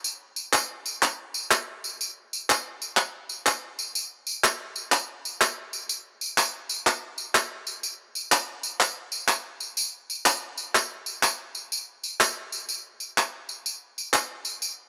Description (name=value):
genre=gospel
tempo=124 BPM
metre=4/4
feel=swing 64% on 8ths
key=none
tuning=none
part: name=tambourine and handclaps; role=percussion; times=0.0-14.8 s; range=none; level=-26 LUFS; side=equal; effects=none
room=light reverb, small room ambience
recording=dry, close 1970s-style studio recording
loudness=-27 LUFS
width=mono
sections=0.0-11.7 A section; 11.7-14.9 B section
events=none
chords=none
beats=| 0.05 0.54 1.03 1.51 | 2.00 2.49 2.97 3.46 | 3.95 4.43 4.92 5.40 | 5.89 6.38 6.86 7.35 | 7.83 8.32 8.80 9.28 | 9.77 10.25 10.74 11.22 | 11.71 12.19 12.68 13.16 | 13.64 14.13 14.61